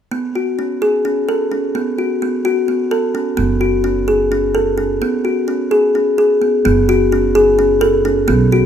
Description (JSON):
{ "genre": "contemporary instrumental, chamber music in an uneven meter", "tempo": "257 BPM (eighths)", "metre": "7/8", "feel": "straight", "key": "F# minor", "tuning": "A4 = 444 Hz", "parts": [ { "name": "kalimba", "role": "arpeggios", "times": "0.1-8.7 s", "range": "B3 to A4", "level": "-14 LUFS", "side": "left 1 dB", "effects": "none" }, { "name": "upright bass", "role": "bass", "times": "3.4-8.7 s", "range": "F#1 to B1", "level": "-18 LUFS", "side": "right 2 dB", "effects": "none" } ], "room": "moderate recital hall reverb, RT60 1.8 s", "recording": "minimal, uncompressed stereo recording", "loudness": "-13 LUFS", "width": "side -8 dB against mid", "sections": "0.1-6.7 A section; 6.7-8.7 B section", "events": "none", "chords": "0.1 F#madd9; 1.8 B5; 3.4 F#5; 5.0 Bsus2; 6.7 F#5", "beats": "| 0.12 0.35 0.59 0.82 1.06 1.29 1.52 | 1.76 1.99 2.22 2.46 2.69 2.92 3.16 | 3.39 3.62 3.86 4.09 4.32 4.56 4.79 | 5.02 5.25 5.49 5.72 5.96 6.19 6.42 | 6.66 6.89 7.12 7.35 7.59 7.82 8.05 | 8.29 8.52" }